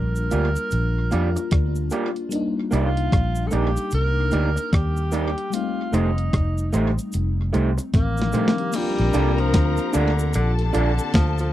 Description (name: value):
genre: lovers rock reggae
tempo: 75 BPM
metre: 4/4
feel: swing 61% on 16ths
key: Bb major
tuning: A4 = 440 Hz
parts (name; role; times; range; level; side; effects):
- warm tenor saxophone; melody; 0.0-11.5 s; D3 to Bb4; -28 LUFS; right 1 dB; tape echo
- FM electric piano with soft pad layer; accompaniment; 0.0-11.5 s; Eb3 to G4; -28 LUFS; left 4 dB; chorus, phaser, tape echo
- vintage muted fingered electric bass; bass; 0.0-11.5 s; F1 to F2; -22 LUFS; equal; none
- cabasa; percussion; 0.2-11.5 s; none; -40 LUFS; left 1 dB; none
- electric guitar through a small old amp; stabs; 0.3-10.9 s; A3 to D5; -23 LUFS; right 3 dB; none
- clean 12-bit digital drum machine; drums; 0.3-11.5 s; crash cymbal, hi-hat, kick drum, rim click, snare drum, toms; -22 LUFS; equal; tape echo
- dark studio string section; second line; 8.7-11.5 s; A4 to Bb5; -29 LUFS; left 4 dB; none
room: little or no reverb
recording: dry, close 1970s-style studio recording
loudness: -19 LUFS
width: side -13 dB against mid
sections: 0.0-8.7 A section; 8.7-11.5 B section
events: drum fill 7.9-8.7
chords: 0.0 Ebmaj9 (rootless); 2.3 Cm9; 5.5 F9; 8.7 Bbmaj7